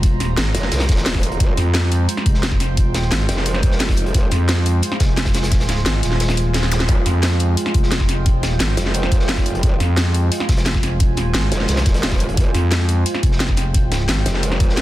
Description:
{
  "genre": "dark technical drum and bass",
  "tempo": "175 BPM",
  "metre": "4/4",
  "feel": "straight",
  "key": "F minor",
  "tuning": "A4 = 440 Hz",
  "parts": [
    { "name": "deep dark ambient pad", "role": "sustained chords", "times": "0.0-14.8 s", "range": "Ab3 to Bb5", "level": "-25 LUFS", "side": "right 2 dB", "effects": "chorus, built-in reverb, sidechain pumping" },
    { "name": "growling FM bass", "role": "bass", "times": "0.0-14.2 s", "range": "Eb1 to F2", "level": "-18 LUFS", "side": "equal", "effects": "none" },
    { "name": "crunchy breakbeat drum kit", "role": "drums", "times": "0.0-14.8 s", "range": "hi-hat, snare drum", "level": "-30 LUFS", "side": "equal", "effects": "high-pass filter on hats, high-pass filter on snare, high-pass filter on room" },
    { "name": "drum and bass drum kit", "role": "drums", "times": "0.0-14.8 s", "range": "hi-hat, snare drum", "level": "-22 LUFS", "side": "equal", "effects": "none" },
    { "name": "electronic kick drum", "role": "drums", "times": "0.0-14.7 s", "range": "none", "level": "-17 LUFS", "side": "equal", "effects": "none" },
    { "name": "growl bass", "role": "bass", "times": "0.5-4.3, 6.9-14.8 s", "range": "Eb1 to C2", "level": "-21 LUFS", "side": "equal", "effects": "chorus, tube saturation" },
    { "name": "zap", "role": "sound effects", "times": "6.7-6.8 s", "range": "none", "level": "-30 LUFS", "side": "equal", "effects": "none" }
  ],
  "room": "little or no reverb",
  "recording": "dense, heavily limited modern master",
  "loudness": "-15 LUFS",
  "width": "side -15 dB against mid",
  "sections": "0.0-14.8 A section",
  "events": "kick drops out 6.2-6.9; drum fill 6.5-6.9",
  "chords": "0.0 Fmadd9",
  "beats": "| 0.03 0.37 0.72 1.06 | 1.40 1.75 2.09 2.43 | 2.77 3.12 3.46 3.80 | 4.14 4.49 4.83 5.17 | 5.52 5.86 6.20 6.54 | 6.89 7.23 7.57 7.92 | 8.26 8.60 8.95 9.29 | 9.63 9.97 10.32 10.66 | 11.00 11.35 11.69 12.03 | 12.37 12.72 13.06 13.40 | 13.74 14.09 14.43 14.77"
}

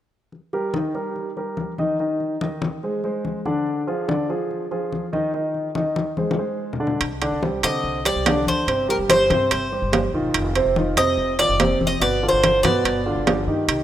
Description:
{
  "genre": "latin, Cuban son and guajira",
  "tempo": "144 BPM",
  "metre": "4/4",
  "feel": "straight",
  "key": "C minor",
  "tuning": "A4 = 440 Hz",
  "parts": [
    { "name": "congas", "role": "percussion", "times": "0.3-13.8 s", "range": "none", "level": "-28 LUFS", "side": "left 4 dB", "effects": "none" },
    { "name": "warm grand piano", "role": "arpeggios", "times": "0.5-13.8 s", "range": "B2 to D6", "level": "-23 LUFS", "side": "right 1 dB", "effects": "none" },
    { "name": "upright bass", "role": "bass", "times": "7.0-13.8 s", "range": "E1 to C3", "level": "-28 LUFS", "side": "left 1 dB", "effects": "none" },
    { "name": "timbales", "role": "percussion", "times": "7.0-13.8 s", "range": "none", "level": "-24 LUFS", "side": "right 5 dB", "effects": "none" },
    { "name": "Cuban tres", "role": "melody", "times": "7.6-13.4 s", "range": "Bb4 to Eb5", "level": "-21 LUFS", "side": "equal", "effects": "none" }
  ],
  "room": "moderate lush hall reverb, RT60 2.6 s",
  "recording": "rough home demo mix",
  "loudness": "-19 LUFS",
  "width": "side -11 dB against mid",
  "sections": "0.3-7.0 A section; 7.0-13.8 B section",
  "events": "drum fill 6.2-7.0",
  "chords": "0.3 Eb; 2.0 Ab; 3.7 Ddim; 5.3 Ab; 7.0 Cmadd9; 8.7 Gsus4; 10.3 F5; 12.0 G7",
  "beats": "| 0.32 0.74 1.16 1.57 | 1.99 2.41 2.83 3.25 | 3.66 4.08 4.50 4.92 | 5.34 5.75 6.17 6.59 | 7.01 7.42 7.84 8.26 | 8.68 9.10 9.51 9.93 | 10.35 10.77 11.18 11.60 | 12.02 12.43 12.85 13.27 | 13.69"
}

